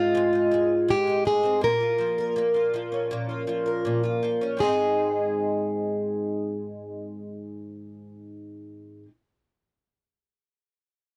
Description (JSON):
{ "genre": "pop", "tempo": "81 BPM", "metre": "4/4", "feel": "straight", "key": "Ab major", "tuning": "A4 = 439 Hz", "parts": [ { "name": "fingerpicked plugged-in steel-string acoustic guitar", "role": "melody", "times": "0.0-9.0 s", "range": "F4 to Bb4", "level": "-26 LUFS", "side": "equal", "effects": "none" }, { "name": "picked twelve-string acoustic guitar", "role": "accompaniment", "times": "0.0-9.1 s", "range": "Ab2 to Bb4", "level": "-30 LUFS", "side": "equal", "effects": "double-tracked" } ], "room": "light reverb", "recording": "dry, close 1970s-style studio recording", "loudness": "-25 LUFS", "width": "mono", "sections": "0.0-4.6 A section; 4.6-7.6 B section", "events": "none", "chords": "0.0 Ab; 1.6 Bbm; 4.6 Ab" }